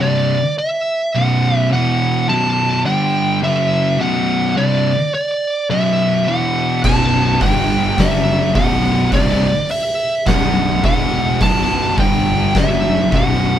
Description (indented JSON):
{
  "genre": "stoner and doom metal",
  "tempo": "105 BPM",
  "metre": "4/4",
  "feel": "swing 62% on 8ths",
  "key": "B minor",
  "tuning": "A4 = 440 Hz",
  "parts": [
    { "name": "fuzz lead guitar", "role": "melody", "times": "0.0-13.6 s", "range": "D5 to A5", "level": "-18 LUFS", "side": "right 2 dB", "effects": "distortion" },
    { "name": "biting overdriven guitar", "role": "riff", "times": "0.0-13.6 s", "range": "B1 to G3", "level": "-24 LUFS", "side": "right 1 dB", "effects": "none" },
    { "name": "thick fuzz guitar", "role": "riff", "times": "0.0-13.6 s", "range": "B1 to G3", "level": "-19 LUFS", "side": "left 6 dB", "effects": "distortion" },
    { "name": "thick fuzz guitar", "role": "riff", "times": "0.0-13.6 s", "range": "B1 to G3", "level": "-21 LUFS", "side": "right 6 dB", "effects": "distortion" },
    { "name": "fuzz picked electric bass", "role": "bass", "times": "6.8-13.6 s", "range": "B0 to G1", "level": "-22 LUFS", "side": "equal", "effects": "overdrive" },
    { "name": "oversized low-tuned drum kit", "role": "drums", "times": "6.8-13.3 s", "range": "crash cymbal, hi-hat, kick drum, snare drum", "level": "-19 LUFS", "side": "equal", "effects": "none" }
  ],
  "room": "moderate stone room reverb, RT60 0.9 s",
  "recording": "band playing live in one room",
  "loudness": "-14 LUFS",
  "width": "side -10 dB against mid",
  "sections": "0.0-13.6 A section",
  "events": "none",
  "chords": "0.0 Bm; 1.7 E5; 2.3 B5; 2.9 G5; 3.4 F#5; 4.0 Bm; 6.3 E5; 6.8 B5; 7.4 G5; 8.0 F#5; 8.6 Bm; 10.8 E5; 11.4 B5; 12.0 G5; 12.6 F#5",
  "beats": "| 0.01 0.58 1.15 1.72 | 2.29 2.85 3.42 3.99 | 4.56 5.13 5.70 6.27 | 6.84 7.41 7.98 8.55 | 9.12 9.69 10.26 10.84 | 11.41 11.98 12.55 13.13"
}